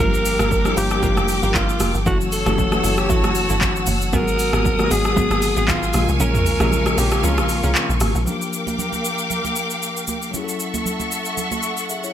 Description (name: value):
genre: amapiano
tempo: 116 BPM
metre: 4/4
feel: swing 55% on 16ths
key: unclear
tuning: A4 = 439 Hz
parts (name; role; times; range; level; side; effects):
- raspy alto saxophone; melody; 0.0-8.0 s; F4 to Bb4; -24 LUFS; right 1 dB; digital delay
- tine electric piano; accompaniment; 0.0-12.1 s; Db3 to E5; -26 LUFS; left 6 dB; none
- clear symphonic string section; sustained chords; 0.0-12.1 s; Cb4 to E6; -25 LUFS; left 1 dB; none
- glassy wavetable pluck; stabs; 0.0-7.7 s; Cb4 to Bb4; -29 LUFS; right 2 dB; chorus, digital delay
- woody log drum bass; bass; 0.0-8.3 s; F1 to Db2; -22 LUFS; equal; none
- deep house drum kit; drums; 0.1-12.1 s; handclaps, hi-hat, kick drum, rim click, shaker, toms; -23 LUFS; equal; overdrive
- congas; percussion; 0.4-11.6 s; none; -30 LUFS; right 6 dB; none
room: little or no reverb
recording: none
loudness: -17 LUFS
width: side -10 dB against mid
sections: 0.0-8.3 A section; 8.3-12.1 B section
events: drop 0.0-8.3; kick muted 6.2-8.3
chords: 0.0 Gm7; 2.1 F#m7; 4.1 Abm7; 5.9 Bbm7; 8.3 Gm7; 10.3 F#m7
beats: 0.51 1.03 1.55 | 2.06 2.58 3.10 3.62 | 4.13 4.65 5.17 5.68 | 6.20 6.72 7.24 7.75 | 8.27 8.79 9.30 9.82 | 10.34 10.86 11.37 11.89